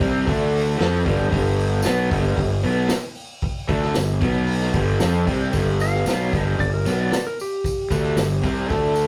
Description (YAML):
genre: garage rock duo or trio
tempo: 114 BPM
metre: 4/4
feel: straight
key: G mixolydian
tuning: A4 = 439 Hz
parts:
  - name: raw garage guitar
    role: riff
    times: 0.0-9.1 s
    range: G2 to F4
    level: -26 LUFS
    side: equal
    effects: overdrive
  - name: fuzz fingered electric bass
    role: bass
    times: 0.0-9.1 s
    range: G1 to F2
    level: -24 LUFS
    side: equal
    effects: overdrive
  - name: raw garage drum kit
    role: drums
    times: 0.0-9.1 s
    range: hi-hat, kick drum, snare drum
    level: -28 LUFS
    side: equal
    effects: none
  - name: tambourine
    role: percussion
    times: 1.8-9.1 s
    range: none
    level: -40 LUFS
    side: equal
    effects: none
  - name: clean lap steel guitar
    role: melody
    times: 5.8-8.9 s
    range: G4 to F5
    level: -30 LUFS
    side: equal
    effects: none
room: moderate booth ambience, RT60 0.2 s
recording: rough rehearsal-room recording, tube saturation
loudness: -21 LUFS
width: mono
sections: 0.0-5.5 A section; 5.5-9.1 B section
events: electric slide guitar solo 5.5-9.1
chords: 0.3 D5; 0.8 G; 4.2 B5; 4.7 G5; 5.5 G